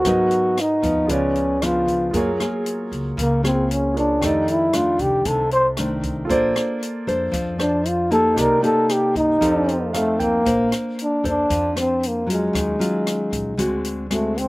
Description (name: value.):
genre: bossa nova.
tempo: 115 BPM.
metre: 4/4.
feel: straight.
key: Bb major.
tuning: A4 = 440 Hz.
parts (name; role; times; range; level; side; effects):
breathy trombone; melody; 0.0-14.5 s; Ab3 to C5; -19 LUFS; equal; none.
warm concert grand piano; accompaniment; 0.0-10.5 s; Eb4 to G5; -27 LUFS; right 3 dB; slapback echo.
open jazz drum kit; drums; 0.0-14.5 s; hi-hat, kick drum, rim click; -30 LUFS; left 1 dB; none.
nylon-string guitar; accompaniment; 0.1-14.5 s; F2 to C5; -24 LUFS; left 1 dB; none.
upright bass; bass; 0.1-14.5 s; Ab1 to G2; -28 LUFS; equal; none.
room: little or no reverb.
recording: recorded outdoors, with no room sound.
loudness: -18 LUFS.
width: side -21 dB against mid.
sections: 0.0-10.5 A section; 10.5-14.5 B section.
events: trombone solo 0.0-10.5; grand piano fill 9.7-10.5.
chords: 0.0 Abm7; 1.1 Db7b9; 2.1 Gbmaj9; 4.2 F13; 6.3 Bbmaj9; 8.4 Cm7; 9.4 F7; 10.5 Bbmaj9; 12.5 Ebm9; 13.6 D7#11.